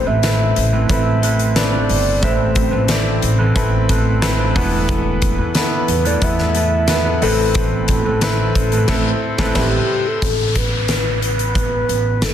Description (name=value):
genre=piano-driven pop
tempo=90 BPM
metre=4/4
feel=straight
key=A minor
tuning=A4 = 437 Hz
part: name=soft octave-layered synth lead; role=melody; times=0.0-12.3 s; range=G4 to E5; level=-21 LUFS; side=equal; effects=chorus, phaser
part: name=clear concert grand piano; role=accompaniment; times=0.0-10.2 s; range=A2 to E5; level=-22 LUFS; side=left 1 dB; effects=none
part: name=clean electric guitar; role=riff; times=0.0-9.8 s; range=A2 to B4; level=-24 LUFS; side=right 5 dB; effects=none
part: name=upright bass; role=bass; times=0.0-12.3 s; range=E1 to E2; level=-19 LUFS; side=equal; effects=none
part: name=huge arena drum kit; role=drums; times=0.2-12.3 s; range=crash cymbal, hi-hat, kick drum, snare drum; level=-20 LUFS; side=equal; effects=none
part: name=downlifter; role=sound effects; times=10.2-12.3 s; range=none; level=-26 LUFS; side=equal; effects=none
room=light reverb, small room reverb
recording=dense, heavily limited modern master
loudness=-14 LUFS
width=side -10 dB against mid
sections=0.0-10.2 A section; 10.2-12.3 B section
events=band accent 8.9-10.2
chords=0.0 Amadd9; 4.6 Esus4; 7.2 Amadd9; 10.2 Asus2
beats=0.23 0.89 1.56 | 2.23 2.89 3.56 4.22 | 4.89 5.56 6.22 6.89 | 7.55 8.22 8.89 9.55 | 10.22 10.89 11.55 12.22